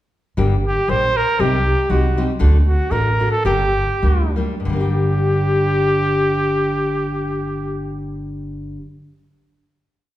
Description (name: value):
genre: mexican folk, mariachi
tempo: 90-120 BPM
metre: 2/4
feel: swing 54% on 8ths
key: G harmonic minor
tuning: A4 = 439 Hz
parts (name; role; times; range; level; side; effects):
- nylon-string guitar; accompaniment; 0.4-8.9 s; G2 to A4; -21 LUFS; left 2 dB; none
- upright bass; bass; 0.4-8.8 s; G1 to D2; -20 LUFS; equal; none
- warm trumpet; melody; 0.7-8.1 s; F#4 to C5; -20 LUFS; right 1 dB; none
room: wet recital hall reverb, RT60 1.4 s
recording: recorded in a church or concert hall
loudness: -16 LUFS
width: side -14 dB against mid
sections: 0.4-4.7 A section; 4.7-7.3 final chord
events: slowing down 2.4-4.7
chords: 0.4 Gm; 1.4 Cm; 2.4 D; 3.4 Gm